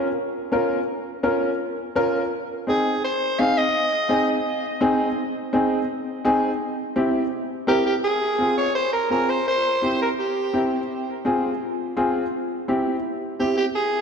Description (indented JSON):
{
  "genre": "latin",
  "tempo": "168 BPM",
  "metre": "4/4",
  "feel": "straight",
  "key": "F harmonic minor from 8.0 s",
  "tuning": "A4 = 441 Hz",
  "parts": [
    { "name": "clear upright piano", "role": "accompaniment", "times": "0.0-13.7 s", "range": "C4 to Bb4", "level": "-22 LUFS", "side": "left 1 dB", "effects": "none" },
    { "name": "raspy soprano saxophone", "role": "melody", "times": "2.7-4.3, 7.7-10.7, 13.4-14.0 s", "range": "G4 to F5", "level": "-22 LUFS", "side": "right 1 dB", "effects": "tape echo" }
  ],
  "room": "wet lush hall reverb, RT60 2.5 s",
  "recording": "dreamy mix soaked in reverb",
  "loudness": "-20 LUFS",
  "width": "side -6 dB against mid",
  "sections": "0.0-8.0 A section; 8.0-14.0 B section",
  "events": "none",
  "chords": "0.0 Bbm; 2.3 Ab; 6.6 C7; 8.0 Fm; 9.5 C; 10.9 Fm; 12.3 C"
}